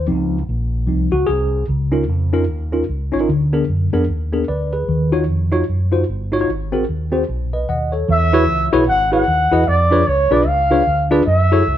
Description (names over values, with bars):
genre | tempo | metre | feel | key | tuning
uptempo gospel | 150 BPM | 4/4 | swing 61% on 8ths | Db major | A4 = 438 Hz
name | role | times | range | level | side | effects
mellow tine electric piano | accompaniment | 0.0-11.6 s | Ab2 to Gb5 | -18 LUFS | left 1 dB | medium stereo tremolo
fingered electric bass | bass | 0.0-11.8 s | G1 to Gb2 | -19 LUFS | equal | none
breathy flugelhorn | melody | 8.1-11.8 s | C#5 to F#5 | -16 LUFS | right 1 dB | none
room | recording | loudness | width
light reverb | band playing live in one room | -15 LUFS | side -11 dB against mid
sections
0.0-1.7 A section; 1.7-8.1 B section; 8.1-11.8 C section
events
tine electric piano solo 0.0-1.7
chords
0.1 Dbmaj7; 1.7 Db69; 3.3 Bb7b9/D; 4.9 Ebm9; 6.5 Ab9; 7.3 Cb; 8.1 E69; 9.7 C#7b9; 11.3 F#m9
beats
| 0.09 0.49 0.89 1.29 | 1.69 2.09 2.49 2.89 | 3.29 3.69 4.09 4.49 | 4.89 5.29 5.69 6.09 | 6.49 6.89 7.29 7.69 | 8.09 8.49 8.89 9.28 | 9.68 10.08 10.48 10.88 | 11.27 11.67